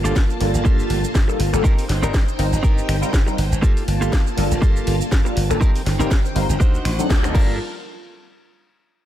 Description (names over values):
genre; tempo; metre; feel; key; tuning
filtered disco house; 121 BPM; 4/4; swing 56% on 16ths; G minor; A4 = 440 Hz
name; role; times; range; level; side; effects
funky polysynth comp; accompaniment; 0.0-7.5 s; F#3 to Bb4; -26 LUFS; left 2 dB; chorus, phaser, sidechain pumping
string machine, full ensemble; sustained chords; 0.0-7.6 s; Eb3 to A5; -27 LUFS; right 1 dB; ensemble chorus, vintage 12-bit sampler grit, sidechain pumping
direct-recorded clean electric guitar; riff; 0.0-7.6 s; Bb3 to C5; -28 LUFS; right 2 dB; vintage 12-bit sampler grit, sidechain pumping
glassy slap bass; bass; 0.0-7.6 s; G1 to G2; -22 LUFS; equal; sidechain pumping
house drum kit; drums; 0.1-7.5 s; crash cymbal, finger snaps, hi-hat, shaker, snare drum; -28 LUFS; equal; sidechain pumping on perc, sidechain pumping on hats, sidechain pumping on cymbals
electronic kick drum; drums; 0.2-7.5 s; none; -17 LUFS; equal; none
room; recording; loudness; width
little or no reverb; none; -16 LUFS; side -12 dB against mid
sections
0.0-7.6 A section; 7.6-9.1 B section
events
drop 0.0-7.6; band accent 7.1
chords
0.0 Gm9; 1.6 Eb6/G; 3.6 Gm9; 5.6 Eb6/G; 6.6 D7b9; 7.3 Gm9; 7.6 N.C.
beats
0.16 0.66 1.15 | 1.65 2.14 2.64 3.13 | 3.63 4.13 4.62 5.12 | 5.61 6.11 6.61 7.10